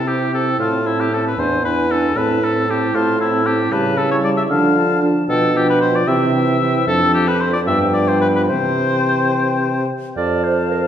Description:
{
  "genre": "quick classical-period movement for wind quintet",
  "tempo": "76 BPM (dotted quarters)",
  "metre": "6/8",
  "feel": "rubato",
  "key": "C major",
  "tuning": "A4 = 440 Hz",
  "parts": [
    { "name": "concert flute", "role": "melody", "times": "0.0-10.9 s", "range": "G5 to A5", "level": "-26 LUFS", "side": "left 6 dB", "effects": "none" },
    { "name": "warm oboe", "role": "second line", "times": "0.0-10.9 s", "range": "E4 to F5", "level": "-20 LUFS", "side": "left 2 dB", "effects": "none" },
    { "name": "dark clarinet", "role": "accompaniment", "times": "0.0-10.8 s", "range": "B3 to D5", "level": "-23 LUFS", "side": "right 4 dB", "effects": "none" },
    { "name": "mellow French horn", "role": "accompaniment", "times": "0.0-9.9 s", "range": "E3 to D4", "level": "-24 LUFS", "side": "left 1 dB", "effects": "none" },
    { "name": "mellow bassoon", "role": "bass", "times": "0.0-10.9 s", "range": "E2 to D3", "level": "-19 LUFS", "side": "right 1 dB", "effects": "none" }
  ],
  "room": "wet recital hall reverb, RT60 1.5 s",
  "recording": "heard from further back in the room",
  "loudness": "-14 LUFS",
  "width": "side -9 dB against mid",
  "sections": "0.0-10.2 A section",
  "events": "none",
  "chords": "0.0 C; 0.6 Am; 1.4 E7; 2.2 Am; 3.7 A7/C#; 4.5 Dm; 5.3 G7/B; 6.1 C; 6.9 Dm/F; 7.7 G7; 8.5 C; 10.2 F"
}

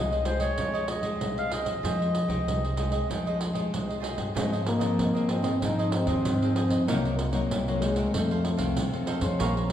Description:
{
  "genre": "samba and choro",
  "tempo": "95 BPM",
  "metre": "4/4",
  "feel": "straight",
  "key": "F minor, Ab major from 4.4 s",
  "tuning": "A4 = 441 Hz",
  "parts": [
    { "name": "warm clarinet", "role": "melody", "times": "0.0-3.7 s", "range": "C5 to F5", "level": "-31 LUFS", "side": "equal", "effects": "none" },
    { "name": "cavaquinho", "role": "accompaniment", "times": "0.0-9.7 s", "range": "Eb4 to Bb5", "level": "-35 LUFS", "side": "right 1 dB", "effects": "none" },
    { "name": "nylon-string guitar", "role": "accompaniment", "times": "0.0-9.7 s", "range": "F2 to C5", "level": "-31 LUFS", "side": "left 2 dB", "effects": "none" },
    { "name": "upright bass", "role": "bass", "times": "0.0-9.7 s", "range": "Bb1 to Ab2", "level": "-31 LUFS", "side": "equal", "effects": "none" },
    { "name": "pandeiro", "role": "percussion", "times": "0.1-9.7 s", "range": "none", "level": "-32 LUFS", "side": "right 2 dB", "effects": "none" },
    { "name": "dark trombone", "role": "second line", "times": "4.4-9.7 s", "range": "Ab3 to Eb4", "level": "-28 LUFS", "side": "left 1 dB", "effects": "none" }
  ],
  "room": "wet recital hall reverb, RT60 1.4 s",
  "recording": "recorded in a church or concert hall",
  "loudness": "-24 LUFS",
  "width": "side -10 dB against mid",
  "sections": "0.0-4.4 A section; 4.4-9.7 B section",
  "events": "trombone solo 4.4-9.7",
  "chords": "0.0 Fm9; 4.4 Ab6; 6.9 Cm7b5; 8.1 F7"
}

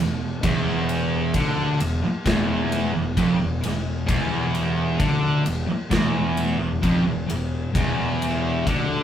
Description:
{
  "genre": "stoner and doom metal",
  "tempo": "66 BPM",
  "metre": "4/4",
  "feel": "straight",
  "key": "unclear",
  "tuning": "A4 = 440 Hz",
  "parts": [
    { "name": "distorted electric guitar", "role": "riff", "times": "0.0-9.0 s", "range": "E2 to D3", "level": "-28 LUFS", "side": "left 1 dB", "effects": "overdrive" },
    { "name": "thick fuzz guitar", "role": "riff", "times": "0.0-9.0 s", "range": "E2 to D3", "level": "-27 LUFS", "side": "left 1 dB", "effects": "distortion" },
    { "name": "thick fuzz guitar", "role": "riff", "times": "0.0-9.0 s", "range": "E2 to D3", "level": "-26 LUFS", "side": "right 4 dB", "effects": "distortion" },
    { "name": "fuzz fingered electric bass", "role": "bass", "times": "0.0-9.0 s", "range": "E1 to D2", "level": "-30 LUFS", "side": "left 1 dB", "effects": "overdrive" },
    { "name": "big rock drum kit", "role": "drums", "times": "0.0-8.9 s", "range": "kick drum, ride cymbal, snare drum", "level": "-26 LUFS", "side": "left 1 dB", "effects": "none" }
  ],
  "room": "moderate studio reverb, RT60 0.5 s",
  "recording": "rough rehearsal-room recording, tube saturation",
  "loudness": "-20 LUFS",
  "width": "side -9 dB against mid",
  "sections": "0.0-9.0 A section",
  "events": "none",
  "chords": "0.0 E5"
}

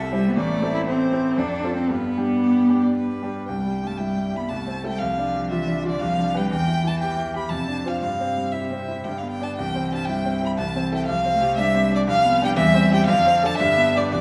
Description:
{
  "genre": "quick classical-period movement for piano trio",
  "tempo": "118 BPM",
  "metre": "3/4",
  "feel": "rubato",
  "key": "C major",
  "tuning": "A4 = 440 Hz",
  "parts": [
    { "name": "warm violin", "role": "melody", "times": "0.0-14.2 s", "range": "G4 to B5", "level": "-26 LUFS", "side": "equal", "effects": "none" },
    { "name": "bright grand piano", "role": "accompaniment", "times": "0.0-14.2 s", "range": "A1 to D5", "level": "-27 LUFS", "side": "equal", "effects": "none" },
    { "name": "rich cello", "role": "second line", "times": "0.1-14.2 s", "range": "C3 to E4", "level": "-27 LUFS", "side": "equal", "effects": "none" }
  ],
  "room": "wet recital hall reverb, RT60 1.4 s",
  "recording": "vinyl crackle, small room ambience",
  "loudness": "-22 LUFS",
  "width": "mono",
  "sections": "0.0-3.5 A section; 3.5-14.2 B section",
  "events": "none",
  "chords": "0.4 Am; 1.4 F; 1.9 G; 3.5 C; 4.5 Am/C; 5.0 F5/C; 6.0 G7/C; 6.5 Em; 7.5 Dm7/F; 8.0 C/G; 9.1 G; 9.6 C; 10.6 Am/C; 11.1 F6/C; 12.1 G7/C; 12.6 C/E; 13.1 Dm7/F; 13.6 G"
}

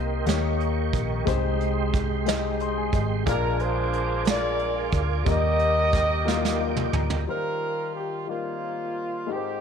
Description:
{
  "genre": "slow gospel",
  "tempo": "60 BPM (dotted quarters)",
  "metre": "6/8",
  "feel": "straight",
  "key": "Eb major",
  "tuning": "A4 = 440 Hz",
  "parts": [
    { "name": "warm upright piano", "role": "accompaniment", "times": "0.0-9.6 s", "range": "Ab2 to C6", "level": "-29 LUFS", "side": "left 12 dB", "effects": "none" },
    { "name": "tonewheel organ", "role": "sustained chords", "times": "0.0-7.2 s", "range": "Ab3 to D6", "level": "-30 LUFS", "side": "right 11 dB", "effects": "chorus vibrato, slow rotary speaker" },
    { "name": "hollow-body short-scale fingered electric bass", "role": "bass", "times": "0.0-7.2 s", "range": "Ab1 to Eb2", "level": "-27 LUFS", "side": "equal", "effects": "none" },
    { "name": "soft brush drum kit", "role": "drums", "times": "0.3-7.3 s", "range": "hi-hat, kick drum, snare drum, toms", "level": "-28 LUFS", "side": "right 3 dB", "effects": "none" },
    { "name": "warm horn section", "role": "melody", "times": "3.3-9.6 s", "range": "Bb3 to Eb5", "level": "-26 LUFS", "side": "right 1 dB", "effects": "tape echo" }
  ],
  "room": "light reverb, studio reverb",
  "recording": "1960s-style stereo with parts hard left and right",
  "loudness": "-22 LUFS",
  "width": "side -7 dB against mid",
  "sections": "0.0-7.3 A section; 7.3-9.6 B section",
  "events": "upright piano fill 2.3-3.3, 6.3-7.3; drum fill 6.3-7.3",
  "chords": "0.3 Eb7; 1.3 Abmaj7/C; 3.3 Bb7; 5.3 Ebmaj7; 7.3 Eb69"
}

